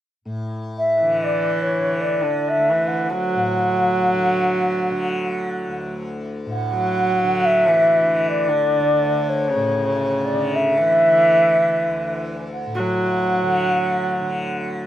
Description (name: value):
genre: indian classical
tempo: free time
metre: none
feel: none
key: D raga hamsadhwani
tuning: A4 = 441 Hz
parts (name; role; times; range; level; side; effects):
- tanpura; drone; 0.3-14.9 s; D2 to D3; -29 LUFS; left 2 dB; none
- mellow bansuri; melody; 0.8-14.8 s; C#5 to F#5; -19 LUFS; equal; none
- clear sarangi; second line; 1.0-14.9 s; C#3 to F#3; -22 LUFS; right 1 dB; slapback echo
room: light reverb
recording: recorded outdoors, with no room sound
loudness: -17 LUFS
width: side -12 dB against mid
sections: 0.3-14.9 A section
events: none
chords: none